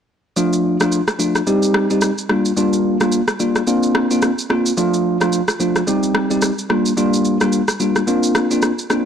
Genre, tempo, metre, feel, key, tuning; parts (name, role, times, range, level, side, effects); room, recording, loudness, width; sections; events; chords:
afrobeats; 109 BPM; 4/4; swing 58% on 16ths; A4 = 444 Hz
bell-like tine electric piano; accompaniment; 0.4-9.1 s; F3 to G4; -16 LUFS; equal; lush chorus
electronic shaker and rim click; drums; 0.4-9.1 s; -21 LUFS; equal; soft clipping on snare
moderate echo chamber reverb, RT60 1.7 s; blown-out, overdriven recording, overdrive; -15 LUFS; side -8 dB against mid
0.4-9.1 A section
0.4 Dm; 1.5 Cm; 2.3 Gm7; 3.7 Bbadd9; 4.8 Dm; 5.9 Cm; 6.7 Gm7; 8.1 Bbadd9